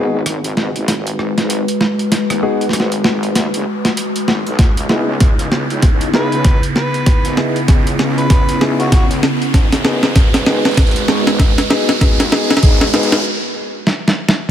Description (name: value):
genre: glitch hop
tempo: 97 BPM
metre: 4/4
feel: swing 60% on 16ths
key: unclear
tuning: A4 = 440 Hz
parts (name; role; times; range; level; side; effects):
- warbly tape-like pad; sustained chords; 0.4-14.5 s; C#3 to B4; -20 LUFS; equal; chorus, built-in reverb, phaser, sidechain pumping
- dark concert grand piano; stabs; 0.0-13.1 s; B3 to G#4; -21 LUFS; left 2 dB; sidechain pumping, low-pass filter, tape echo
- wobble bass; bass; 0.0-13.2 s; F#1 to D#2; -23 LUFS; equal; chorus, overdrive, high-pass filter
- riser; sound effects; 0.2-13.3 s; none; -24 LUFS; right 2 dB; none
- boom bap sampler-style drum kit; drums; 0.3-14.4 s; hi-hat, rim click, snare drum; -17 LUFS; equal; none
- electronic kick drum; drums; 4.6-12.8 s; none; -12 LUFS; equal; none
- overdriven harmonica; melody; 6.1-9.0 s; F#4 to B4; -24 LUFS; equal; tape echo
room: light reverb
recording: none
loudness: -12 LUFS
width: side -10 dB against mid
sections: 0.0-14.5 A section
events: build-up 0.0-14.5; drum fill 0.0-13.3, 13.9-14.5; filter sweep on ambient pad 0.0-14.5; riser 0.2-13.3; break 13.3-14.5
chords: 0.0 G#m7; 4.6 C#m9; 9.5 G#m7